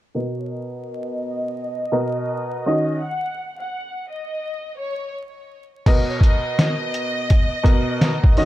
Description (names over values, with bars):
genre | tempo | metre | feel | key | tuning
hip hop, boom-bap hip-hop | 84 BPM | 4/4 | swing 62% on 16ths | unclear | A4 = 440 Hz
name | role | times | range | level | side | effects
warm upright piano | accompaniment | 0.1-8.5 s | B2 to D#5 | -24 LUFS | equal | high-pass filter, low-pass filter
warm symphonic violin section | melody | 0.4-8.5 s | Db5 to Gb5 | -27 LUFS | equal | high-pass filter, low-pass filter
trip hop sampler-style drum kit | drums | 5.9-8.5 s | crash cymbal, hi-hat, kick drum, snare drum | -16 LUFS | equal | none
room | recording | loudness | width
light reverb | dark, warm production, vinyl crackle | -20 LUFS | side -15 dB against mid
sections
0.1-5.9 A section; 5.9-8.5 B section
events
filter sweep 0.1-5.9; break 3.0-5.9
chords
0.1 Bmaj7; 2.6 Ebm7; 5.9 Bmaj7